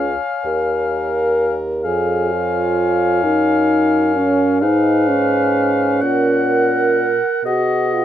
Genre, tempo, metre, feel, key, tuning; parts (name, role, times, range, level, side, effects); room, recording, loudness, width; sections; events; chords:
classical, slow romantic movement for wind quintet; 43 BPM (dotted quarters); 6/8; rubato; Db major, F# major from 4.6 s; A4 = 444 Hz
mellow hollow silver concert flute; melody; 0.0-8.0 s; F#5 to G#5; -24 LUFS; left 9 dB
warm oboe; second line; 0.0-8.0 s; D#5 to F#5; -22 LUFS; left 4 dB
mellow French horn; accompaniment; 0.0-8.0 s; C#4 to Bb4; -18 LUFS; equal
warm clarinet; accompaniment; 0.0-8.0 s; G#4 to Db5; -24 LUFS; right 7 dB
dark bassoon; bass; 0.0-8.0 s; Db2 to B2; -20 LUFS; right 2 dB
moderate studio ambience, RT60 0.5 s; minimal, uncompressed stereo recording; -14 LUFS; side -11 dB against mid
0.0-8.0 A section
0.0 Db; 1.9 Db/F; 4.6 C#7/G#; 6.0 F#/A#; 7.5 G#m7/B